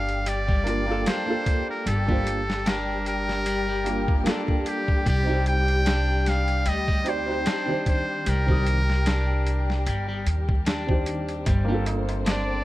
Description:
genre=trip hop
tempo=75 BPM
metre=4/4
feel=swing 55% on 16ths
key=G minor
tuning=A4 = 440 Hz
part: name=trumpet with metal mute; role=melody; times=0.0-12.6 s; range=G4 to G5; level=-29 LUFS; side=equal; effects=vintage 12-bit sampler grit, tape echo
part: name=felt-muted upright piano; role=accompaniment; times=0.0-12.6 s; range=Eb3 to Eb6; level=-30 LUFS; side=right 1 dB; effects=harmonic tremolo, tape echo
part: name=dark studio string section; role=sustained chords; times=0.0-12.6 s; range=G3 to C5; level=-32 LUFS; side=left 2 dB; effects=none
part: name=electric guitar at the edge of break-up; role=arpeggios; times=0.0-12.6 s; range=G3 to D4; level=-33 LUFS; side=left 2 dB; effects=vintage 12-bit sampler grit, ping-pong delay
part: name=upright bass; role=bass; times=0.0-12.6 s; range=G1 to Eb2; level=-26 LUFS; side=equal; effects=none
part: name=boom bap sampler-style drum kit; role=drums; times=0.1-12.5 s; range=hi-hat, kick drum, snare drum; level=-25 LUFS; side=equal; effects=none
part: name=tabla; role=percussion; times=11.5-12.4 s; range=none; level=-42 LUFS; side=right 4 dB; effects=none
room=little or no reverb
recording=vinyl crackle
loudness=-22 LUFS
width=side -16 dB against mid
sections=0.0-12.6 A section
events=none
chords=0.0 Gm7; 5.1 Cm; 11.5 Gm7

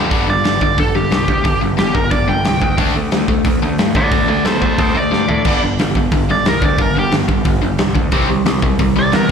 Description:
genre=punk rock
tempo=180 BPM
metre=4/4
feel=straight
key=unclear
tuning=A4 = 440 Hz
part: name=distorted electric guitar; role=riff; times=0.0-9.3 s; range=G2 to D4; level=-21 LUFS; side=right 11 dB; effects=overdrive, slapback echo
part: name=overdriven electric guitar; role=riff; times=0.0-9.3 s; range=G2 to D4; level=-20 LUFS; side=left 11 dB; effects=slapback echo
part: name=overdriven picked electric bass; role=bass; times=0.0-9.3 s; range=G1 to A2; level=-21 LUFS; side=equal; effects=none
part: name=big rock drum kit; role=drums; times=0.1-9.2 s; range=crash cymbal, hi-hat, kick drum, snare drum, toms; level=-18 LUFS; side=equal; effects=none
part: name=biting overdriven guitar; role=melody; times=0.3-9.3 s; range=F#4 to G5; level=-18 LUFS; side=equal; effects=ping-pong delay
room=small room ambience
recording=live gig heard through the venue's PA, club reverb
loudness=-13 LUFS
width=side -7 dB against mid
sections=0.1-9.3 A section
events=overdriven electric guitar solo 0.1-9.3; drum fill 5.1-5.5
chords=0.1 G5; 2.8 D5; 5.5 G5; 8.1 C5

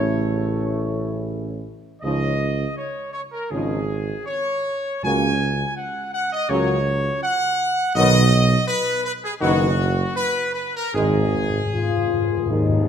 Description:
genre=classical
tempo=81 BPM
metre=4/4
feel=uneven beats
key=unclear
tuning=A4 = 440 Hz
part: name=bright trumpet section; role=melody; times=0.0-12.9 s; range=Gb4 to Ab5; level=-23 LUFS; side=equal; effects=none
part: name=mellow French horn section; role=sustained chords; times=0.0-12.9 s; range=Bb3 to Gb4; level=-27 LUFS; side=left 7 dB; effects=none
part: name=warm trombone section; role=sustained chords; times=0.0-12.8 s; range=Db3 to A3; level=-28 LUFS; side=right 1 dB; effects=none
part: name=mellow tuba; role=bass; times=0.0-12.9 s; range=Gb1 to Eb2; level=-22 LUFS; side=right 3 dB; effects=none
part: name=timpani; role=percussion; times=5.0-6.1, 10.9-12.9 s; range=Ab2 to Db3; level=-26 LUFS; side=left 2 dB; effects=none
room=wet scoring stage reverb, RT60 1.7 s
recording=none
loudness=-19 LUFS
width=side -8 dB against mid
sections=0.0-12.9 A section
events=timpani fill 10.9-12.9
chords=0.0 A; 2.0 Dbadd9; 5.0 Gb/Db; 8.0 Cb; 10.9 Ab

